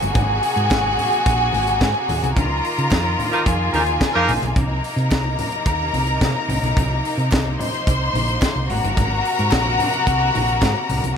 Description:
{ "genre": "disco", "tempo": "109 BPM", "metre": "4/4", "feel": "straight", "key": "unclear", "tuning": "A4 = 440 Hz", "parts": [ { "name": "clear studio string section", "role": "second line", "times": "0.0-11.1 s", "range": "Ab4 to C6", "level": "-22 LUFS", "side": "left 1 dB", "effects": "none" }, { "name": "clear studio string section", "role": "sustained chords", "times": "0.0-11.1 s", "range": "C3 to Gb4", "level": "-24 LUFS", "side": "left 2 dB", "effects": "none" }, { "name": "hollow-body short-scale fingered electric bass", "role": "bass", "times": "0.0-11.2 s", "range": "G1 to Db3", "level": "-22 LUFS", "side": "right 1 dB", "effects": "none" }, { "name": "tight funk drum kit", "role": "drums", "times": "0.0-11.2 s", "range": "hi-hat, kick drum, snare drum", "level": "-22 LUFS", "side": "equal", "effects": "none" }, { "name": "congas", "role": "percussion", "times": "0.0-11.2 s", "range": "none", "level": "-30 LUFS", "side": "left 2 dB", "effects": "none" }, { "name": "group handclap", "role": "percussion", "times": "0.7-10.7 s", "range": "none", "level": "-35 LUFS", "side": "right 4 dB", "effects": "none" }, { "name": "clear horn section", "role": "stabs", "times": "3.3-4.3 s", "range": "F3 to Bb4", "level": "-20 LUFS", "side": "right 1 dB", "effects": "none" } ], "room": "light reverb", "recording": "none", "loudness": "-17 LUFS", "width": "side -7 dB against mid", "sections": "0.0-11.2 A section", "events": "band accent 2.4-4.6", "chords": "0.0 Ab9; 2.4 Db69; 4.6 Cm7; 8.7 Ab9" }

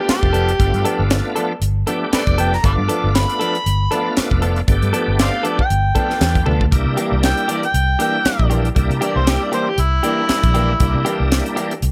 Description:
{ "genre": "straight-eighth soul blues", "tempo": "118 BPM", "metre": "4/4", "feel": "swing 56% on 16ths", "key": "G mixolydian", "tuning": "A4 = 440 Hz", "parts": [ { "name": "overdriven harmonica", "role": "melody", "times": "0.0-11.3 s", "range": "E4 to D6", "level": "-23 LUFS", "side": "equal", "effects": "none" }, { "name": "bright tonewheel organ", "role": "accompaniment", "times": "0.0-11.7 s", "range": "G3 to G4", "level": "-26 LUFS", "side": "equal", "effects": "slow rotary speaker, overdrive, chorus vibrato" }, { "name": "vintage muted fingered electric bass", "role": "bass", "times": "0.1-11.9 s", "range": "F1 to C3", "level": "-21 LUFS", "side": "equal", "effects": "none" }, { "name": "tight funk drum kit", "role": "drums", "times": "0.1-11.9 s", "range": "hi-hat, kick drum, snare drum, toms", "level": "-22 LUFS", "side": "equal", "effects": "none" }, { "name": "direct-recorded clean electric guitar", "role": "stabs", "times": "0.3-11.7 s", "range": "E3 to A4", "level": "-27 LUFS", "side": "equal", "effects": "spring reverb" } ], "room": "light reverb", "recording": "none", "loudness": "-17 LUFS", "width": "mono", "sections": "0.0-11.9 A section", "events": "drum fill 6.5", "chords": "0.0 G9; 6.7 C9" }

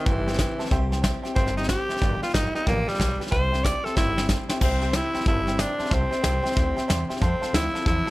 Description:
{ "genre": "rockabilly", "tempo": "185 BPM", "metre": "4/4", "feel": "swing 63% on 8ths", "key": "C major", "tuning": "A4 = 440 Hz", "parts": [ { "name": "raspy tenor saxophone", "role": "melody", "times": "0.0-8.1 s", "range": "E3 to D5", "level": "-27 LUFS", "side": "equal", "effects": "none" }, { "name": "picked steel-string acoustic guitar", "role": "accompaniment", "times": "0.0-8.1 s", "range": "G2 to A4", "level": "-33 LUFS", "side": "left 4 dB", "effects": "none" }, { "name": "bright upright piano", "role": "accompaniment", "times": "0.1-8.1 s", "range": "B4 to A5", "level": "-34 LUFS", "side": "right 3 dB", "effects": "none" }, { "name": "upright bass", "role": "bass", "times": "0.1-8.1 s", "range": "G1 to F2", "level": "-28 LUFS", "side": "equal", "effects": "none" }, { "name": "soft brush drum kit", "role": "drums", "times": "0.1-8.1 s", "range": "crash cymbal, hi-hat, kick drum, snare drum", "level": "-26 LUFS", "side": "equal", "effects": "none" } ], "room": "light reverb", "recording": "none", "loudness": "-21 LUFS", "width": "side -19 dB against mid", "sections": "0.0-4.6 A section; 4.6-8.1 B section", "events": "tenor saxophone solo 0.0-4.6; drum fill 4.0-4.6", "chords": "0.0 C; 2.0 G7; 3.3 C; 7.2 F" }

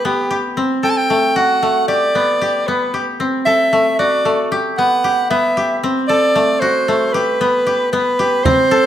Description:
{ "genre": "contemporary instrumental, chamber music in an uneven meter", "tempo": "228 BPM (eighths)", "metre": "5/8", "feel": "straight", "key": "unclear", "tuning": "A4 = 443 Hz", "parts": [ { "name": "clear soprano saxophone", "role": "melody", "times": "0.0-8.9 s", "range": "G4 to A5", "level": "-15 LUFS", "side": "right 1 dB", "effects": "none" }, { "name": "koto", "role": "arpeggios", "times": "0.0-8.9 s", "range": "A3 to A4", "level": "-17 LUFS", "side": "left 2 dB", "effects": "none" }, { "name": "frame drum", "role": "percussion", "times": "8.5-8.7 s", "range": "none", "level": "-17 LUFS", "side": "right 3 dB", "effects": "none" } ], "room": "moderate recital hall reverb, RT60 1.2 s", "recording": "none", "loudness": "-13 LUFS", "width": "side -11 dB against mid", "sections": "0.0-8.4 A section", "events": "none", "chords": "0.0 G; 0.6 Am6; 1.9 G; 3.2 D7; 4.5 Em; 5.8 D7; 7.1 G" }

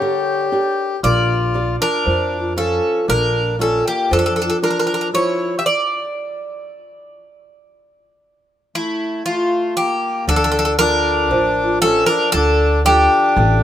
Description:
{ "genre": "greek folk, Greek bouzouki band", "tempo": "117 BPM (eighths)", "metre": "9/8", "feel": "straight", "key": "D harmonic minor", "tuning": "A4 = 440 Hz", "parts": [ { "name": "Greek bouzouki", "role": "melody", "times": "0.0-13.6 s", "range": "E4 to E5", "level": "-18 LUFS", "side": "equal", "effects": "none" }, { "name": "accordion", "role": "second line", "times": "0.0-13.6 s", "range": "A3 to G4", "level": "-22 LUFS", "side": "left 4 dB", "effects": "none" }, { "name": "flamenco guitar", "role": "accompaniment", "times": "0.0-13.6 s", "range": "D3 to F5", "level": "-22 LUFS", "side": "right 1 dB", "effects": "none" }, { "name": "upright bass", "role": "bass", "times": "1.0-13.6 s", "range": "A1 to F2", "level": "-20 LUFS", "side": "equal", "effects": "none" } ], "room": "light reverb", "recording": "minimal, uncompressed stereo recording", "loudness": "-15 LUFS", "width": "side -11 dB against mid", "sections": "0.0-10.3 A section; 10.3-13.6 B section", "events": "stop 5.7-10.3", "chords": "0.0 Gm; 1.0 Bb; 5.7 N.C.; 10.3 Dm" }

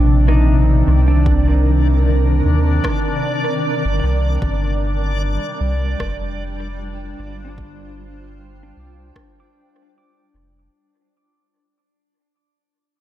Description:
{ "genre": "ambient dub", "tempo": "76 BPM", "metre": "4/4", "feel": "swing 54% on 16ths", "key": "unclear", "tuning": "A4 = 440 Hz", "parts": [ { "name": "granular cloud pad", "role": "sustained chords", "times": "0.0-10.7 s", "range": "C3 to G5", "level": "-23 LUFS", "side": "left 1 dB", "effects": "built-in reverb" }, { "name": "pedal steel guitar", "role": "arpeggios", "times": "0.0-11.9 s", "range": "D4 to D6", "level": "-25 LUFS", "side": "right 2 dB", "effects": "low-pass filter, dub echo" }, { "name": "soft dub sub bass", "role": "bass", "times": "0.0-10.7 s", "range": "F1 to Eb2", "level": "-16 LUFS", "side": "equal", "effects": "none" }, { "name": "backwards swelling texture", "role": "texture", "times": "0.0-10.8 s", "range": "D4 to D5", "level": "-27 LUFS", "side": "equal", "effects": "built-in reverb" }, { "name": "electronic kick drum", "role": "drums", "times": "1.3-9.3 s", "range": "none", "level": "-22 LUFS", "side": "equal", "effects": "studio reverb" }, { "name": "electronic rim click", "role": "drums", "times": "2.8-9.3 s", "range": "none", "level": "-32 LUFS", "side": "equal", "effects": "overdrive, studio reverb, dub echo" } ], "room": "digital ambience", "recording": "none", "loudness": "-14 LUFS", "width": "side -13 dB against mid", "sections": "0.0-10.7 A section", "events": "fade-out 0.0-10.7", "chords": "0.0 Cm9; 4.4 G7sus4" }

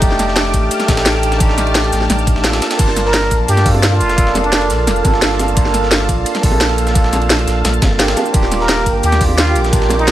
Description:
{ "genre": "liquid drum and bass", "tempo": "173 BPM", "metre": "4/4", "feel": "straight", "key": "unclear", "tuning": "A4 = 439 Hz", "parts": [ { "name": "overdriven tine electric piano", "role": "accompaniment", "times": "0.0-10.1 s", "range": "A3 to A5", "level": "-18 LUFS", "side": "right 2 dB", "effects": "phaser, ping-pong delay" }, { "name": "lush unison pad", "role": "sustained chords", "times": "0.0-10.1 s", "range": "G4 to F6", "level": "-23 LUFS", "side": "equal", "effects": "chorus, phaser, sidechain pumping" }, { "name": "warm sub bass", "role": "bass", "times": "0.0-10.1 s", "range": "Eb1 to G2", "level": "-18 LUFS", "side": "equal", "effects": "none" }, { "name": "breakbeat sampler-style drum kit", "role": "drums", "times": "0.0-10.1 s", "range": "hi-hat, ride cymbal, snare drum", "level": "-23 LUFS", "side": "right 1 dB", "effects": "high-pass filter on cymbals, high-pass filter on snare, high-pass filter on hats" }, { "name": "drum and bass drum kit", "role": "drums", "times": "0.0-10.1 s", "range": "crash cymbal, hi-hat, snare drum", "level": "-18 LUFS", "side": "equal", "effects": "none" }, { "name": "electronic kick drum", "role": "drums", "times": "0.0-9.8 s", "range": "none", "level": "-15 LUFS", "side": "equal", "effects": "none" }, { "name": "trumpet with plunger mute", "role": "melody", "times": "3.1-4.7, 8.6-10.1 s", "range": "D4 to Bb4", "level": "-19 LUFS", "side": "equal", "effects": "ping-pong delay" }, { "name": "bongos", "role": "percussion", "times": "3.7-10.0 s", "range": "none", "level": "-25 LUFS", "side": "right 2 dB", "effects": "none" } ], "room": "light reverb", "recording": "none", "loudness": "-11 LUFS", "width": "side -13 dB against mid", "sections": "0.0-10.1 A section", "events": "kick drops out 2.4-2.8", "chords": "0.0 F13; 2.6 Gm9; 8.2 Ebmaj7" }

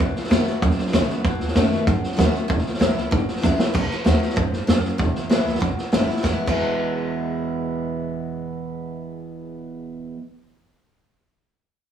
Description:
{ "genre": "rockabilly", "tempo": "192 BPM", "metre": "4/4", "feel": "straight", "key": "E major", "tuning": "A4 = 440 Hz", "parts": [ { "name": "picked steel-string acoustic guitar", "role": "accompaniment", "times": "0.0-10.2 s", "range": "E2 to F#4", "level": "-25 LUFS", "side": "equal", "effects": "none" }, { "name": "upright bass", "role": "bass", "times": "0.0-10.1 s", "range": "E1 to G#2", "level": "-26 LUFS", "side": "right 1 dB", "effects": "none" }, { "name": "vintage drum kit", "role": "drums", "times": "0.0-6.6 s", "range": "crash cymbal, hi-hat, kick drum, snare drum", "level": "-21 LUFS", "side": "right 1 dB", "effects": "none" } ], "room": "moderate stone room reverb, RT60 1.0 s", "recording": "band playing live in one room, small room ambience", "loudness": "-19 LUFS", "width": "side -9 dB against mid", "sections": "0.0-3.7 A section; 3.7-6.2 B section; 6.2-8.7 C section", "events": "drum fill 3.4-3.7", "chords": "0.0 B7; 2.5 E; 3.7 B7; 5.0 E" }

